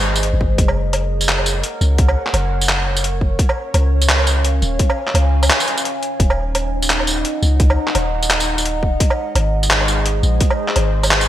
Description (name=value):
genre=half-time drum and bass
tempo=171 BPM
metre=4/4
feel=swing 57% on 16ths, half-time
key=Eb dorian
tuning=A4 = 436 Hz
part: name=dark analog pad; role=sustained chords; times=0.0-11.3 s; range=Ab3 to Bb5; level=-23 LUFS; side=equal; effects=chorus, phaser, sidechain pumping
part: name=long sustained 808-style bass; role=bass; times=0.0-11.3 s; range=Eb1 to Db2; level=-18 LUFS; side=equal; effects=none
part: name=boom bap sampler-style drum kit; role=drums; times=0.2-11.3 s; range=handclaps, hi-hat, tambourine, woodblock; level=-18 LUFS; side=equal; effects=gated reverb
part: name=electronic kick drum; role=drums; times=0.4-10.5 s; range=none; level=-16 LUFS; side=equal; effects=none
room=light reverb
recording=bright 1980s-style digital production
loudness=-14 LUFS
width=side -12 dB against mid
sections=0.0-11.3 A section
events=none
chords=0.0 Ab; 0.6 Gb; 3.4 Db; 6.2 Ebm; 9.0 Ab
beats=0.23 | 0.58 0.94 1.29 1.64 | 1.99 2.34 2.69 3.04 | 3.39 3.74 4.09 4.44 | 4.79 5.14 5.50 5.85 | 6.20 6.55 6.90 7.25 | 7.60 7.95 8.30 8.65 | 9.01 9.36 9.71 10.06 | 10.41 10.76 11.11